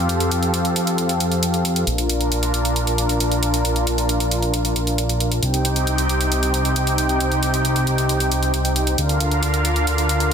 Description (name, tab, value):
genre	uplifting trance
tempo	135 BPM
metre	4/4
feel	straight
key	Bb major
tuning	A4 = 438 Hz
part	filtered supersaw swell	sustained chords	0.0-10.3 s	C3 to G5	-21 LUFS	equal	none
part	fat analog bass	bass	0.0-10.3 s	Bb1 to F2	-22 LUFS	equal	none
part	electronic hi-hat	drums	0.1-10.3 s	none	-25 LUFS	equal	studio ambience
room	light reverb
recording	dense, heavily limited modern master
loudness	-17 LUFS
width	side -7 dB against mid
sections	0.0-10.3 A section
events	none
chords	0.0 Fadd9; 1.9 Bb; 5.4 Cm; 9.0 Bb/D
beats	| 0.09 0.54 0.98 1.43 | 1.87 2.31 2.76 3.20 | 3.65 4.09 4.54 4.98 | 5.43 5.87 6.32 6.76 | 7.20 7.65 8.09 8.54 | 8.98 9.43 9.87 10.31